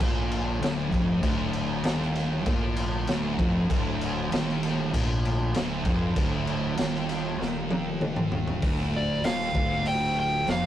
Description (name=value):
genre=stoner and doom metal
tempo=97 BPM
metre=4/4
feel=straight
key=D minor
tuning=A4 = 440 Hz
part: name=string machine, violins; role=sustained chords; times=0.0-10.7 s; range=D3 to F4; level=-40 LUFS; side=right 1 dB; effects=none
part: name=thick fuzz guitar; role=riff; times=0.0-10.7 s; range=D2 to Bb2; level=-31 LUFS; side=left 4 dB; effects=distortion
part: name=thick fuzz guitar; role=riff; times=0.0-10.7 s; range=D2 to Bb2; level=-30 LUFS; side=right 4 dB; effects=distortion
part: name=growling fingered electric bass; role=bass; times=0.0-10.7 s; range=D1 to Bb1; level=-34 LUFS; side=equal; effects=overdrive
part: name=raw garage drum kit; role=drums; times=0.0-10.6 s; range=crash cymbal, hi-hat, kick drum, snare drum, toms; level=-28 LUFS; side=equal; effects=none
part: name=fuzz lead guitar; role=melody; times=9.0-10.7 s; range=D5 to G5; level=-27 LUFS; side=right 1 dB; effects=distortion
room=moderate small room reverb, RT60 0.5 s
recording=rough rehearsal-room recording, warm saturation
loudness=-24 LUFS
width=side -11 dB against mid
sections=0.0-8.6 A section; 8.6-10.7 B section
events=drum fill 7.4-8.6; lead electric guitar solo 8.6-10.7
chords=0.0 Dm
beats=0.00 0.62 | 1.24 1.85 2.47 3.08 | 3.70 4.32 4.93 5.55 | 6.16 6.78 7.39 8.01 | 8.63 9.24 9.86 10.47